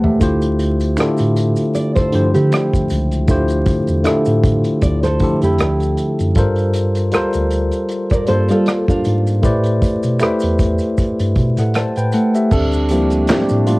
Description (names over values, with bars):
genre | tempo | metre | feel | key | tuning
R&B, neo-soul | 78 BPM | 4/4 | swing 55% on 16ths | D minor | A4 = 440 Hz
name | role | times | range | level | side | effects
tine electric piano | accompaniment | 0.0-13.8 s | D3 to A5 | -17 LUFS | left 1 dB | medium stereo tremolo
mellow tine electric piano | bass | 0.0-13.8 s | C#2 to A3 | -18 LUFS | equal | medium stereo tremolo
unplugged drum kit | drums | 0.0-13.8 s | crash cymbal, handclaps, hi-hat, kick drum, rim click, snare drum, toms | -19 LUFS | equal | cassette tape
maracas and finger snaps | percussion | 0.2-13.8 s | none | -34 LUFS | right 2 dB | none
nylon-string guitar | second line | 1.7-9.4 s | D4 to D5 | -20 LUFS | right 1 dB | none
clear trombone section | stabs | 12.5-13.8 s | G3 to D4 | -21 LUFS | right 2 dB | none
room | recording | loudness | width
light reverb | home recording on cassette, vinyl crackle | -14 LUFS | side -22 dB against mid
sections
0.0-12.5 A section; 12.5-13.8 A section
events
drum fill 0.0; tine electric piano solo 12.5-13.8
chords
0.2 Dm11; 6.4 Gm11; 9.4 Am11; 12.5 Dm11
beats
| 0.21 0.98 1.75 2.51 | 3.28 4.05 4.82 5.59 | 6.36 7.13 7.90 8.67 | 9.44 10.21 10.98 11.74 | 12.51 13.28